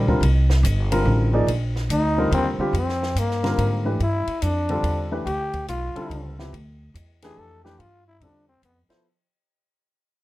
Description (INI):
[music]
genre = modal jazz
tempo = 143 BPM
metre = 3/4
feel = swing 65% on 8ths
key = unclear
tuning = A4 = 441 Hz
[part]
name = growling trombone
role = second line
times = 0.0-8.8 s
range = Bb3 to A4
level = -26 LUFS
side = left 1 dB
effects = none
[part]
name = warm baby grand piano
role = accompaniment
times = 0.0-9.0 s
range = C3 to D5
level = -24 LUFS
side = equal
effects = none
[part]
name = upright bass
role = bass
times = 0.0-8.9 s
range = G1 to Ab2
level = -22 LUFS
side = equal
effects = none
[part]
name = compact cocktail drum kit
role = drums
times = 0.1-9.0 s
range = hi-hat, kick drum, ride cymbal, snare drum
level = -34 LUFS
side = left 1 dB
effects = none
[sound]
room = light reverb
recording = rough home demo mix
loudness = -20 LUFS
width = side -17 dB against mid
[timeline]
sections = 0.0-9.0 A section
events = fade-out 0.0-9.0; trombone solo 0.0-9.0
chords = 0.0 Fsus4; 4.0 G9sus4